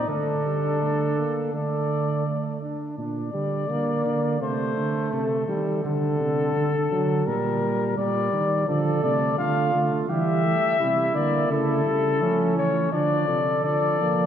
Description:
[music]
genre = classical, imitative canzona for brass ensemble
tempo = 84 BPM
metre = 4/4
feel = straight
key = G minor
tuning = A4 = 443 Hz
[part]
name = dark cornet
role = melody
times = 0.0-14.3 s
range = A4 to F5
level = -25 LUFS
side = left 5 dB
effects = none
[part]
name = warm flugelhorn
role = second line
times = 0.0-2.6, 8.7-14.3 s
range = C#4 to A4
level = -29 LUFS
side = right 4 dB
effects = none
[part]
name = mellow trombone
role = accompaniment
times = 0.0-14.3 s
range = D3 to D4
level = -29 LUFS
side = right 2 dB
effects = none
[part]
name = mellow tuba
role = bass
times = 0.0-14.3 s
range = Bb2 to F3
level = -27 LUFS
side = right 3 dB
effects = none
[sound]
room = wet church reverb, RT60 3.6 s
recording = none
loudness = -21 LUFS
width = side -9 dB against mid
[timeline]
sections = 0.0-3.0 A section; 3.0-14.3 B section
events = none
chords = 0.1 Dsus4; 1.5 D5; 3.0 Gm/Bb; 4.4 Adim/C; 5.8 D; 7.3 Gm/Bb; 8.7 Dm; 10.1 Edim; 11.5 A/C#; 12.9 Dm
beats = | 0.08 0.81 1.54 2.26 | 2.98 3.70 4.41 5.13 | 5.84 6.55 7.26 7.97 | 8.68 9.39 10.09 10.80 | 11.51 12.22 12.93 13.64

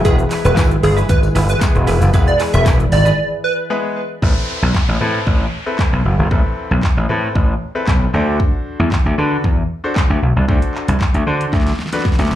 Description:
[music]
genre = dance-pop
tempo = 115 BPM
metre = 4/4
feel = straight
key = A dorian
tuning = A4 = 440 Hz
[part]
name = bright concert grand piano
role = accompaniment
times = 0.0-12.3 s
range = G#3 to D5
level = -23 LUFS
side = left 3 dB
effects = sidechain pumping, slapback echo
[part]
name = warm analog pad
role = sustained chords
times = 0.0-4.2 s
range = E3 to B4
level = -25 LUFS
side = left 4 dB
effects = chorus, sidechain pumping
[part]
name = direct-recorded clean electric guitar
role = riff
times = 0.0-3.2 s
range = E4 to B4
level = -26 LUFS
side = right 5 dB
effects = analog chorus, slapback echo
[part]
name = pop drum kit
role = drums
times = 0.0-12.4 s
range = handclaps, hi-hat, kick drum, shaker, snare drum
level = -16 LUFS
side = equal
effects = none
[part]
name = plucky unison lead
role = melody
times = 0.1-3.5 s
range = G#4 to E5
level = -19 LUFS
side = right 2 dB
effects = sidechain pumping, slapback echo, tape echo
[part]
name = gritty slap bass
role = bass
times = 0.1-12.4 s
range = E1 to D3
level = -15 LUFS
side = equal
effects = overdrive, sidechain pumping
[part]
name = tambourine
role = percussion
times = 0.1-3.2 s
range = none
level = -38 LUFS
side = left 5 dB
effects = none
[part]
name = downlifter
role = sound effects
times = 4.2-8.4 s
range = none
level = -28 LUFS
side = equal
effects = slapback echo
[sound]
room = little or no reverb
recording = live gig heard through the venue's PA, club reverb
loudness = -13 LUFS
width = side -12 dB against mid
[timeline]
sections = 0.0-4.2 A section; 4.2-12.4 B section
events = drop 0.0-4.2; break 3.2-4.2; grand piano fill 7.6-8.4; drum fill 11.5-12.4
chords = 0.0 E; 4.2 Amadd9; 8.1 D7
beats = | 0.05 0.57 1.09 1.61 | 2.14 2.66 3.18 3.70 | 4.22 4.75 5.27 5.79 | 6.31 6.83 7.36 7.88 | 8.40 8.92 9.44 9.96 | 10.48 11.01 11.53 12.05

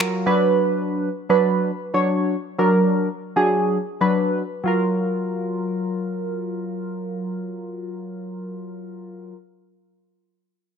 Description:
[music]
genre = pop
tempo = 116 BPM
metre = 4/4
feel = straight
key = F# major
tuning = A4 = 440 Hz
[part]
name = warm analog keys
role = accompaniment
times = 0.0-9.4 s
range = F#3 to C#5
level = -20 LUFS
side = right 1 dB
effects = chorus, phaser
[sound]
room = moderate plate reverb, RT60 1.9 s, digital ambience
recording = none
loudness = -19 LUFS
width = side -7 dB against mid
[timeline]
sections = 0.0-4.7 A section; 4.7-8.8 B section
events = none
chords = 0.3 Bm; 4.7 F#maj7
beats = 0.00 | 0.52 1.04 1.55 2.07 | 2.59 3.11 3.62 4.14 | 4.66 5.18 5.69 6.21 | 6.73 7.25 7.76 8.28

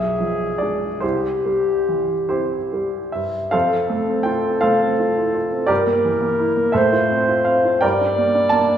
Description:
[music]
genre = classical, romantic duo for clarinet and grand piano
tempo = 47-60 BPM (dotted quarters)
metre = 6/8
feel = rubato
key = F major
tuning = A4 = 439 Hz
[part]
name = warm clarinet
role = melody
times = 0.0-8.8 s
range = G4 to D5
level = -20 LUFS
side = equal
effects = none
[part]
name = clear baby grand piano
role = accompaniment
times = 0.0-8.8 s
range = B1 to A5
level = -19 LUFS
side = right 1 dB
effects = none
[sound]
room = wet recital hall reverb, RT60 1.4 s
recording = heard from further back in the room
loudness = -17 LUFS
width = side -9 dB against mid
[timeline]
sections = 0.0-3.5 A section; 3.5-8.8 B section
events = none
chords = 0.0 Bdim7; 1.0 C; 3.5 F; 5.7 Edim/G; 6.8 F/A; 7.8 Gm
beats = | 1.03 2.30 | 3.54 4.63 | 5.70 6.76 | 7.83

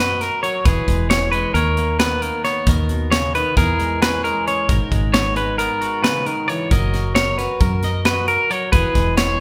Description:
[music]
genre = math rock and midwest emo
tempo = 267 BPM (eighths)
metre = 9/8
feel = straight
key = unclear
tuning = A4 = 440 Hz
[part]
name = twangy electric guitar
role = accompaniment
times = 0.0-9.4 s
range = G#2 to D#5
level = -28 LUFS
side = equal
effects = none
[part]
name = clean electric guitar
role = arpeggios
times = 0.0-9.4 s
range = A#4 to C#5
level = -22 LUFS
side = equal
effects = none
[part]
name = fingered electric bass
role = bass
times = 0.0-9.4 s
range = E1 to F#2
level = -24 LUFS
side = equal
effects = none
[part]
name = modern studio drum kit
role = drums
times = 0.2-9.3 s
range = hi-hat, kick drum, snare drum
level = -23 LUFS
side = equal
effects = none
[sound]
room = moderate recital hall reverb, RT60 1.4 s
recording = recorded in a church or concert hall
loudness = -18 LUFS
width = mono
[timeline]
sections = 0.0-9.4 A section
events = none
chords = 0.0 F#6; 0.6 E69; 1.5 Bmaj9/D#; 3.6 E6; 4.7 G#m11; 6.7 F#6; 8.7 E69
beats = 0.20 0.42 | 0.65 0.87 1.09 1.32 1.54 1.77 1.99 2.22 2.44 | 2.67 2.89 3.12 3.34 3.57 3.79 4.02 4.24 4.46 | 4.69 4.91 5.14 5.36 5.59 5.81 6.04 6.26 6.48 | 6.71 6.93 7.16 7.38 7.61 7.83 8.05 8.28 8.50 | 8.73 8.95 9.18 9.40

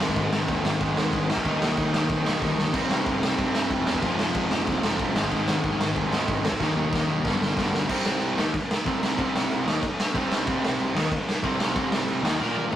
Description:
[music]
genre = punk rock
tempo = 186 BPM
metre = 4/4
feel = straight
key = C minor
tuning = A4 = 440 Hz
[part]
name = distorted electric guitar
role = riff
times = 0.0-12.8 s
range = F2 to Bb4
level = -29 LUFS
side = right 5 dB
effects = overdrive
[part]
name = sludgy distorted guitar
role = riff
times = 0.0-12.8 s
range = G2 to Bb4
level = -28 LUFS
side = left 3 dB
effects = overdrive
[part]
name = fuzz picked electric bass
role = bass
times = 0.0-12.8 s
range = F1 to C3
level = -34 LUFS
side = equal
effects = none
[part]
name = raw garage drum kit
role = drums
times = 0.0-12.8 s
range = crash cymbal, kick drum, snare drum, toms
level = -25 LUFS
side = equal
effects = none
[sound]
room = light reverb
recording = rough rehearsal-room recording, tube saturation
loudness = -22 LUFS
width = side -11 dB against mid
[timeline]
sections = 0.0-7.9 A section; 7.9-12.8 B section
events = drum fill 2.4-2.7, 6.6-7.9, 12.4-12.8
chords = 0.0 Ab; 1.5 Eb; 2.7 Cm; 4.0 Fm; 5.2 Ab; 6.6 Eb; 7.2 G; 7.9 Cm; 12.4 Bb5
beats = | 0.17 0.49 0.81 1.13 | 1.46 1.78 2.10 2.42 | 2.74 3.07 3.39 3.71 | 4.03 4.35 4.68 5.00 | 5.32 5.64 5.96 6.29 | 6.61 6.93 7.25 7.57 | 7.89 8.22 8.54 8.86 | 9.18 9.51 9.83 10.15 | 10.47 10.79 11.12 11.44 | 11.76 12.09 12.41 12.73

